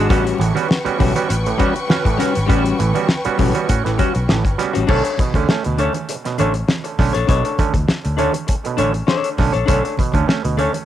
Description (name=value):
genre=funk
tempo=100 BPM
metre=4/4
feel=straight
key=B minor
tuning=A4 = 440 Hz
part: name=vintage hollow-body jazz guitar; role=accompaniment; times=0.0-10.8 s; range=G3 to C#5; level=-22 LUFS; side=left 7 dB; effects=cassette tape
part: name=warm studio string section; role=sustained chords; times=0.0-4.8 s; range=B4 to C#6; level=-26 LUFS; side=left 1 dB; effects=cassette tape
part: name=auto-wah clav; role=stabs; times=0.0-10.7 s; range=A2 to F#4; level=-21 LUFS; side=right 7 dB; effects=overdrive, cassette tape, tape echo
part: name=fingered electric bass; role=bass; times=0.0-10.7 s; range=G1 to A2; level=-20 LUFS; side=equal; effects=none
part: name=damped 70s drum kit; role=drums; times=0.1-10.8 s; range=crash cymbal, hi-hat, kick drum, snare drum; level=-19 LUFS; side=left 1 dB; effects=cassette tape
part: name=congas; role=percussion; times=0.1-10.8 s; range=none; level=-30 LUFS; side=right 7 dB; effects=none
room=light reverb, small room ambience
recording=home recording on cassette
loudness=-15 LUFS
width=side -12 dB against mid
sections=0.0-4.9 A section; 4.9-10.8 B section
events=none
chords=0.1 A13; 4.9 Bm9